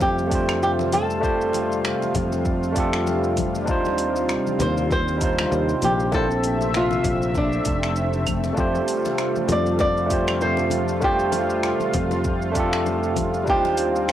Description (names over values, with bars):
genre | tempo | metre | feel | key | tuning
sunset chillout | 98 BPM | 4/4 | swing 57% on 16ths | F mixolydian | A4 = 443 Hz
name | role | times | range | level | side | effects
flamenco guitar | melody | 0.0-14.1 s | D4 to D5 | -24 LUFS | equal | cassette tape, tape echo, plate reverb
barky tine electric piano | accompaniment | 0.0-14.1 s | G3 to C5 | -25 LUFS | right 1 dB | auto-pan, cassette tape, tape echo, plate reverb
lush unison pad | sustained chords | 0.0-14.1 s | C3 to E5 | -26 LUFS | equal | chorus, cassette tape, plate reverb
sustaining fretless electric bass | bass | 0.0-14.1 s | F1 to F2 | -26 LUFS | equal | lush chorus
deep house drum kit | drums | 0.0-14.1 s | claves, finger snaps, hi-hat, shaker | -30 LUFS | equal | cassette tape
electronic kick drum | drums | 0.0-13.6 s | none | -27 LUFS | equal | cassette tape
congas | percussion | 0.0-14.1 s | none | -34 LUFS | left 10 dB | none
room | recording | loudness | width
moderate small room reverb, RT60 0.6 s | home recording on cassette | -19 LUFS | side -11 dB against mid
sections
0.0-14.1 A section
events
none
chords
0.0 F69; 3.7 Ebmaj13; 6.1 Bbmaj9#11; 8.6 F69; 13.5 Ebmaj13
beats
0.01 0.62 | 1.23 1.84 2.45 3.07 | 3.68 4.29 4.90 5.52 | 6.13 6.74 7.35 7.96 | 8.58 9.19 9.80 10.41 | 11.03 11.64 12.25 12.86 | 13.47 14.09